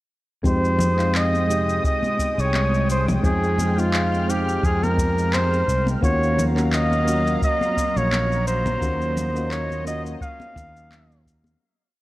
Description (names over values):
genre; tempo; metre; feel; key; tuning
sunset chillout; 86 BPM; 4/4; swing 55% on 16ths; F phrygian; A4 = 440 Hz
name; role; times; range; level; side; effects
soft electric-piano-like synth keys; accompaniment; 0.4-11.6 s; C3 to G5; -27 LUFS; equal; chorus, auto-pan
lush unison pad; sustained chords; 0.9-11.6 s; Gb3 to F6; -30 LUFS; right 1 dB; chorus, phaser
fretless electric bass; bass; 0.4-11.5 s; Bb1 to F2; -23 LUFS; equal; none
electronic kick drum; drums; 0.4-11.4 s; none; -24 LUFS; equal; studio reverb
warm flugelhorn; melody; 0.5-11.2 s; F4 to F5; -24 LUFS; equal; ping-pong delay
electronic shaker and handclaps; drums; 0.5-11.6 s; none; -30 LUFS; left 1 dB; overdrive, studio reverb
congas; percussion; 0.8-11.6 s; none; -30 LUFS; left 2 dB; none
room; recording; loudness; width
light reverb; worn, warbling old tape, cassette tape, warbly pitch drift; -19 LUFS; side -17 dB against mid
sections
0.4-11.6 groove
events
fade-out 7.9-11.6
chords
0.4 Fm9; 6.0 Ebm9